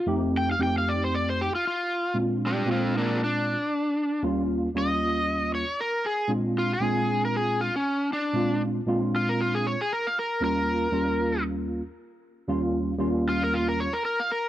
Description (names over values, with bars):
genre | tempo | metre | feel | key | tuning
blues | 116 BPM | 4/4 | swing 56% on 16ths | Bb mixolydian | A4 = 441 Hz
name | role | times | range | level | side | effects
overdriven slide guitar | melody | 0.0-14.5 s | Bb3 to G5 | -26 LUFS | equal | none
barky tine electric piano | accompaniment | 0.1-13.9 s | Eb2 to G4 | -26 LUFS | equal | overdrive, ensemble chorus
room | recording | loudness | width
little or no reverb | dry, close 1970s-style studio recording | -24 LUFS | side -13 dB against mid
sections
0.0-2.2 A section; 2.2-14.5 B section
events
electric slide guitar solo 0.0-2.2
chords
0.1 F9; 2.2 Bb9; 4.2 Eb9; 6.3 Bb9; 10.4 Eb9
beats
| 0.09 0.61 1.12 1.64 | 2.16 2.67 3.19 3.71 | 4.22 4.74 5.25 5.77 | 6.29 6.80 7.32 7.84 | 8.35 8.87 9.38 9.90 | 10.41 10.93 11.45 11.96 | 12.48 12.99 13.51 14.03